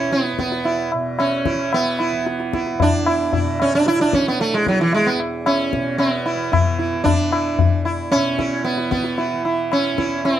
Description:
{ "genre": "indian classical, Hindustani", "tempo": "113 BPM", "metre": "4/4", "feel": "straight", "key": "unclear", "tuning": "A4 = 445 Hz", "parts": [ { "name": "sitar", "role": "melody", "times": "0.0-10.4 s", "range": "E3 to E4", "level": "-19 LUFS", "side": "right 2 dB", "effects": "none" }, { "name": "tanpura", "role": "drone", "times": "0.0-10.4 s", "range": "E2 to E3", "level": "-28 LUFS", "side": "right 3 dB", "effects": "none" }, { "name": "tabla", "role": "percussion", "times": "0.1-10.4 s", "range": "none", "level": "-22 LUFS", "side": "left 4 dB", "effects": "none" } ], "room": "wet studio ambience, RT60 0.5 s", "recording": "dark, warm production", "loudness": "-17 LUFS", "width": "side -11 dB against mid", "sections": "0.0-10.4 A section", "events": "none", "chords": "none", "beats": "0.12 | 0.66 1.20 1.73 2.26 | 2.80 3.33 3.87 4.40 | 4.93 5.46 6.00 6.53 | 7.06 7.59 8.12 8.65 | 9.18 9.71 10.24" }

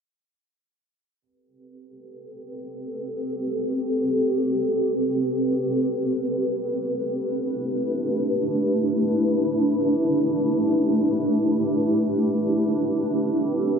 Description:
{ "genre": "drum and bass", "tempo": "free time", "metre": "none", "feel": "none", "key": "A minor", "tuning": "A4 = 437 Hz", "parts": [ { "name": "granular cloud pad", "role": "sustained chords", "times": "2.5-13.8 s", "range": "A3 to B4", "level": "-21 LUFS", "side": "equal", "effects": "built-in reverb" } ], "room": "moderate lush hall reverb, RT60 2.3 s", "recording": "heavily compressed radio sound, low-pass filter", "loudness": "-21 LUFS", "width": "side -6 dB against mid", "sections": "1.2-13.8 A section", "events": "filter sweep on ambient pad 1.2-13.8; filter sweep 1.2-13.8", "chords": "1.2 Am9; 7.1 Em7/A; 13.0 Am9", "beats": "free time" }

